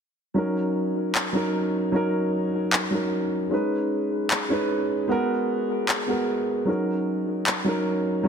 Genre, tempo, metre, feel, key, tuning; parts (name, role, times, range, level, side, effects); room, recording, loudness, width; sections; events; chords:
future bass; 152 BPM; 4/4; half-time; Eb minor; A4 = 440 Hz
dark grand piano; accompaniment; 0.3-8.3 s; Gb3 to B4; -23 LUFS; right 1 dB; ping-pong delay
electronic handclaps; drums; 1.2-7.5 s; -26 LUFS; left 1 dB; small room ambience
moderate lush hall reverb, RT60 2.1 s; dense, heavily limited modern master; -22 LUFS; side -7 dB against mid
0.4-8.3 A section
0.4 Ebm7; 3.5 B69; 5.1 Abm9; 6.7 Ebm7